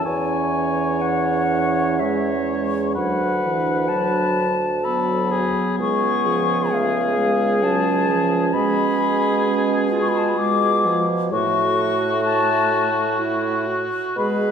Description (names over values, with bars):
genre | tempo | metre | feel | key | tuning
classical, slow romantic movement for wind quintet | 64 BPM | 3/4 | uneven beats, rubato | F# minor | A4 = 439 Hz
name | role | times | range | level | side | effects
concert flute | melody | 0.0-14.5 s | E5 to D6 | -23 LUFS | left 5 dB | none
warm oboe | second line | 0.0-14.5 s | F#4 to C#5 | -25 LUFS | left 2 dB | none
clear clarinet | accompaniment | 0.0-14.5 s | B3 to G#4 | -26 LUFS | right 10 dB | none
mellow French horn | accompaniment | 0.0-14.5 s | E3 to A3 | -26 LUFS | right 1 dB | none
warm bassoon | bass | 0.1-14.5 s | C#2 to B2 | -24 LUFS | right 2 dB | none
room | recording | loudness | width
wet scoring stage reverb, RT60 1.8 s | recorded in a church or concert hall | -18 LUFS | side -7 dB against mid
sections
0.0-14.5 A section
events
none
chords
0.1 C#m/E; 3.0 Bm/D; 5.8 C#; 8.5 C#7/B; 11.3 F#m/A